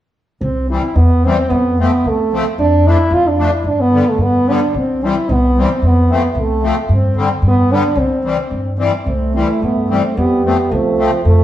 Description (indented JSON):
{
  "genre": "alpine folk, alpine dance band",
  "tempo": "111 BPM",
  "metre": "2/4",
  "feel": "rubato",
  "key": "C major",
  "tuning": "A4 = 440 Hz",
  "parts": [
    { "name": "warm French horn", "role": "melody", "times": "0.4-11.4 s", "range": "A3 to F4", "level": "-16 LUFS", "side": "right 1 dB", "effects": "none" },
    { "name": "upright bass", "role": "bass", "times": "0.4-11.4 s", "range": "C2 to G2", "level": "-16 LUFS", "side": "equal", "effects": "none" },
    { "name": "musette accordion", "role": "accompaniment", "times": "0.7-11.1 s", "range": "D3 to D4", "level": "-20 LUFS", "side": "left 4 dB", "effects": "none" },
    { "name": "warm euphonium", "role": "second line", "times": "9.1-11.4 s", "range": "F3 to A3", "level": "-18 LUFS", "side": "right 3 dB", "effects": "none" }
  ],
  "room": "wet large studio reverb, RT60 1.3 s",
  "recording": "band playing live in one room",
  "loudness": "-12 LUFS",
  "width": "side -12 dB against mid",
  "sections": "0.4-9.1 A section; 9.1-11.4 A section",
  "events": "none",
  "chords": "0.4 C; 1.5 F; 2.6 Dm/F; 3.6 G; 4.7 C; 5.8 F; 6.9 Gsus4; 7.4 G; 8.0 C; 10.2 Fadd9"
}